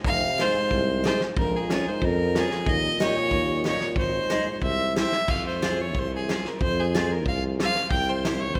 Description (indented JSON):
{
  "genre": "alpine folk, alpine dance band",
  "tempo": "92 BPM",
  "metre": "2/4",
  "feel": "rubato",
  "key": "F harmonic minor from 5.3 s",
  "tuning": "A4 = 440 Hz",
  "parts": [
    { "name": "dark euphonium", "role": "second line", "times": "0.0-4.9 s", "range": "F2 to C3", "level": "-34 LUFS", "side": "equal", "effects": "none" },
    { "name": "warm tuba", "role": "bass", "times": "0.0-8.6 s", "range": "F1 to G2", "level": "-32 LUFS", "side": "equal", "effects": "none" },
    { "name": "loose indie drum kit", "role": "drums", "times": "0.0-8.6 s", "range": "crash cymbal, kick drum, snare drum", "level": "-32 LUFS", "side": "equal", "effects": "none" },
    { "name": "rich fiddle", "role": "melody", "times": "0.1-8.6 s", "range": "Ab4 to G5", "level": "-28 LUFS", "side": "equal", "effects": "none" },
    { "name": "picked steel-string acoustic guitar", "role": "accompaniment", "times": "0.4-8.4 s", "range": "C4 to C5", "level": "-34 LUFS", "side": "equal", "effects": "none" }
  ],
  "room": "moderate cathedral reverb, RT60 5.1 s",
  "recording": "recorded in a church or concert hall",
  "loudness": "-25 LUFS",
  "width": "mono",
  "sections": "0.0-5.3 A section; 5.3-8.6 B section",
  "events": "none",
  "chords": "0.0 Fm; 1.4 Bbm; 2.7 Eb7; 4.0 Ab; 4.6 C; 5.3 Fm; 7.9 C",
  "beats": "| 0.04 0.71 | 1.36 2.02 | 2.67 3.31 | 3.96 4.62 | 5.29 5.95 | 6.61 7.26 | 7.91 8.55"
}